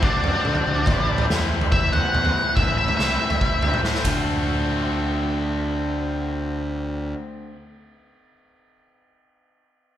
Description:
indie rock; 142 BPM; 4/4; straight; D mixolydian; A4 = 439 Hz
octave-fuzz lead guitar; melody; 0.0-3.8 s; D4 to F#5; -24 LUFS; equal; distortion
overdriven electric guitar; riff; 0.0-7.6 s; A2 to A4; -26 LUFS; left 3 dB
raw garage drum kit; drums; 0.0-4.1 s; kick drum, ride cymbal, snare drum, toms; -24 LUFS; equal
fuzz picked electric bass; bass; 0.2-7.1 s; G1 to D3; -26 LUFS; right 1 dB; overdrive
moderate recital hall reverb, RT60 1.4 s; recorded in a church or concert hall; -20 LUFS; side -11 dB against mid
0.0-4.3 A section; 4.3-7.6 B section
lead electric guitar solo 0.0-4.3; drum fill 3.8-4.3
0.0 D7; 0.9 Am; 4.0 D7

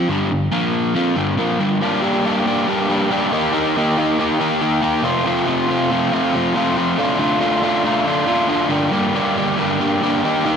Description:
rock; 139 BPM; 4/4; straight; G minor; A4 = 439 Hz
crunchy overdriven guitar; solo; 0.0-10.6 s; F2 to G4; -16 LUFS; equal; slapback echo, tape echo
wet lush hall reverb, RT60 2.4 s; big arena sound; -16 LUFS; side -7 dB against mid
0.0-1.8 A section; 1.8-10.6 B section
0.0 G5; 0.5 Bb5; 0.9 Gm; 3.3 Eb; 5.0 F; 7.0 Dm; 8.7 Gm

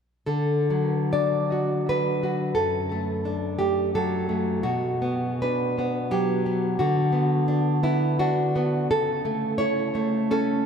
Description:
romantic piece for solo classical guitar; 67-90 BPM; 3/4; rubato; D major; A4 = 440 Hz
nylon-string guitar; solo; 0.3-10.7 s; F#2 to D5; -22 LUFS; equal; ping-pong delay
wet church reverb, RT60 3.2 s; dreamy mix soaked in reverb; -22 LUFS; side -6 dB against mid
0.3-10.7 A section
0.3 D; 2.6 D/F#; 4.6 Bm; 6.8 Bm/D; 8.9 A/C#

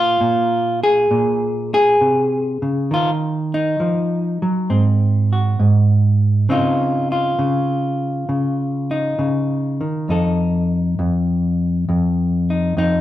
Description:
solo jazz; 67 BPM; 4/4; swing 69% on 8ths; Bb minor; A4 = 440 Hz
hollow-body jazz guitar; solo; 0.0-13.0 s; F2 to A4; -16 LUFS; equal
wet large studio reverb, RT60 0.9 s; band playing live in one room; -16 LUFS; side -13 dB against mid
0.0-13.0 A section
0.0 Bb7sus2; 2.9 Ebmadd9; 4.7 Ab7; 6.5 Dbmaj9; 10.1 F7

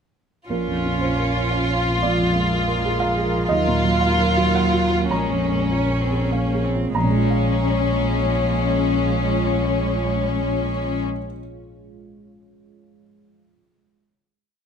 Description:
neoclassical piano and strings; 94-123 BPM; 3/4; rubato; Bb minor; A4 = 440 Hz
rich chamber violin section; melody; 0.5-11.0 s; Db4 to F4; -22 LUFS; left 4 dB; plate reverb
clear cello; second line; 0.5-11.0 s; Gb3 to Db4; -27 LUFS; right 6 dB
felt-muted upright piano; accompaniment; 0.5-11.4 s; Bb1 to Bb5; -25 LUFS; right 3 dB
deep dark ambient pad; sustained chords; 1.6-11.0 s; Gb3 to Db5; -33 LUFS; right 3 dB; chorus, built-in reverb
rich double bass; bass; 0.5-11.0 s; Bb1 to Eb2; -24 LUFS; equal
light reverb; -18 LUFS; side -7 dB against mid
0.5-6.9 theme; 6.9-10.7 final chord
slowing down 2.8-6.9
0.5 Bbm; 2.0 Bb7; 3.5 Ebmadd9; 5.1 Bbm7

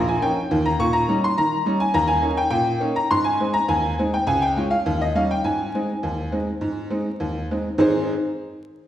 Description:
ragtime piano; 103 BPM; 2/4; straight; Ab major; A4 = 440 Hz
tack piano; solo; 0.0-8.1 s; Bb1 to Db6; -19 LUFS; equal
wet recital hall reverb, RT60 1.5 s; recorded in a church or concert hall, vinyl crackle; -19 LUFS; side -11 dB against mid
0.0-7.8 A section; 7.8-8.9 B section
0.0 Eb5; 0.8 Eb7/Bb; 1.9 Eb5; 3.1 Ab; 4.3 Db; 4.9 Eb7; 5.4 Ab

